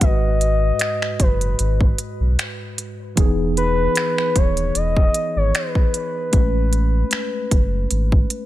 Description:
contemporary R&B; 76 BPM; 4/4; swing 54% on 16ths; A4 = 442 Hz
gliding portamento lead; melody; 0.0-8.5 s; B4 to D#5; -23 LUFS; left 2 dB; chorus, ping-pong delay
tine electric piano; accompaniment; 0.0-8.5 s; G#2 to B4; -26 LUFS; equal; medium stereo tremolo
sub bass with octave; bass; 0.0-8.3 s; D#1 to B1; -20 LUFS; equal
trap drum kit; drums; 0.0-8.5 s; finger snaps, hi-hat, kick drum; -18 LUFS; equal
digital ambience; -17 LUFS; side -15 dB against mid
0.0-8.5 A section
0.0 G#m7; 3.2 Emaj7; 6.3 Amaj9
| 0.01 0.80 1.59 2.38 | 3.17 3.96 4.75 5.54 | 6.33 7.12 7.91

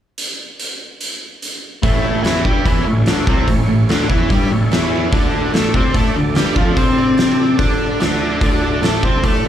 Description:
blues rock power trio and southern rock; 146 BPM; 4/4; straight; A mixolydian; A4 = 440 Hz
oversized low-tuned drum kit; drums; 0.2-9.3 s; hi-hat, kick drum, snare drum; -18 LUFS; equal
overdriven tonewheel organ; sustained chords; 1.8-9.5 s; A3 to D5; -25 LUFS; right 3 dB; slow rotary speaker, chorus vibrato
distorted electric guitar; riff; 1.8-9.4 s; A2 to D5; -18 LUFS; equal; distortion, slapback echo
fuzz picked electric bass; bass; 1.8-9.5 s; A1 to D3; -20 LUFS; left 1 dB; overdrive
light reverb; live gig heard through the venue's PA, club reverb; -14 LUFS; side -10 dB against mid
0.2-1.8 A section; 1.8-9.5 B section
0.2 N.C.; 1.8 A; 5.1 D5
| 0.18 0.59 1.00 1.42 | 1.83 2.24 2.65 3.06 | 3.47 3.88 4.30 4.71 | 5.12 5.53 5.94 6.36 | 6.77 7.18 7.59 8.01 | 8.42 8.83 9.24

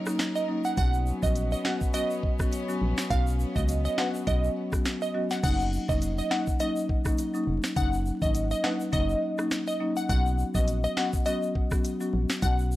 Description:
dancehall; 103 BPM; 4/4; swing 56% on 16ths; F# major; A4 = 443 Hz
glassy wavetable pluck; melody; 0.0-12.6 s; D#5 to F#5; -31 LUFS; right 1 dB; chorus, tape echo
rich studio string section; sustained chords; 0.0-5.4 s; F#3 to A#4; -40 LUFS; left 2 dB; sidechain pumping
marimba with medium mallets; accompaniment; 0.1-12.6 s; F#3 to F#4; -30 LUFS; left 1 dB
afro-pop drum kit; drums; 0.1-12.6 s; crash cymbal, finger snaps, hi-hat, kick drum, rim click, snare drum; -28 LUFS; equal
egg shaker and timbales; percussion; 0.1-12.8 s; -42 LUFS; right 2 dB
organ-like FM bass; bass; 0.8-12.8 s; E#1 to C#2; -28 LUFS; equal
studio reverb; dry, gritty hardware recording, vinyl crackle; -25 LUFS; side -16 dB against mid
0.0-5.4 A section; 5.4-12.8 A section
0.0 F#6; 0.8 Bsus2; 5.4 F#6; 10.1 Bsus2
0.19 | 0.78 1.36 1.94 2.52 | 3.10 3.69 4.27 4.85 | 5.43 6.02 6.60 7.18 | 7.76 8.35 8.93 9.51 | 10.10 10.68 11.26 11.84 | 12.43

